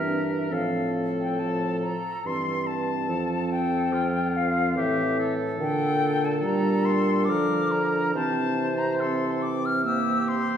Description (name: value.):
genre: classical, slow romantic movement for wind quintet.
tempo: 70 BPM.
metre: 3/4.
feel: rubato.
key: F major.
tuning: A4 = 439 Hz.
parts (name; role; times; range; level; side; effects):
silver concert flute; melody; 0.0-10.6 s; E5 to F6; -28 LUFS; left 5 dB; none.
warm oboe; second line; 0.0-10.6 s; F4 to C5; -32 LUFS; right 1 dB; none.
mellow French horn; accompaniment; 0.0-10.5 s; D3 to G3; -30 LUFS; right 2 dB; none.
warm clarinet; accompaniment; 0.0-10.6 s; Bb3 to D4; -29 LUFS; right 2 dB; none.
mellow bassoon; bass; 0.0-10.4 s; F2 to D3; -29 LUFS; equal; none.
room: wet recital hall reverb, RT60 1.5 s.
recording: heard from further back in the room.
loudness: -23 LUFS.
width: side -8 dB against mid.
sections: 0.0-10.6 A section.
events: none.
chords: 0.0 C7/G (rootless); 0.5 F/A; 3.1 F; 5.6 Bbmaj7; 8.2 C.